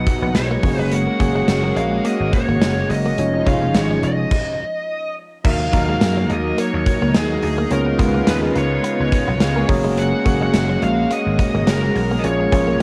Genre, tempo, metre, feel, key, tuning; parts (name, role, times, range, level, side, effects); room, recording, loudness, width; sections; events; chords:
1980s-style pop; 106 BPM; 4/4; swing 55% on 16ths; Eb minor; A4 = 440 Hz
high-gain lead guitar; melody; 0.0-12.8 s; Ab4 to F#5; -27 LUFS; equal; distortion, cassette tape
bright tine electric piano; accompaniment; 0.0-12.8 s; Ab3 to Bb5; -25 LUFS; equal; cassette tape
lush unison pad; sustained chords; 0.0-12.8 s; Db3 to Gb4; -27 LUFS; equal; chorus, cassette tape
vintage slap bass; bass; 0.0-12.8 s; F1 to Gb2; -24 LUFS; equal
direct-recorded clean electric guitar; riff; 0.1-12.8 s; Gb3 to Db4; -30 LUFS; equal
gated 80s drum kit; drums; 0.1-12.8 s; crash cymbal, hi-hat, kick drum, snare drum, tambourine; -23 LUFS; equal; cassette tape
light reverb, small room ambience; home recording on cassette; -18 LUFS; mono
0.0-5.4 A section; 5.4-12.8 A section
stop 4.3-5.4; tine electric piano fill 9.1-10.0
0.0 B; 0.6 Gbadd9; 3.2 Dbadd9/F; 4.3 N.C.; 5.4 Ebm; 7.7 Db7; 9.7 Gbadd9; 12.2 Bbm7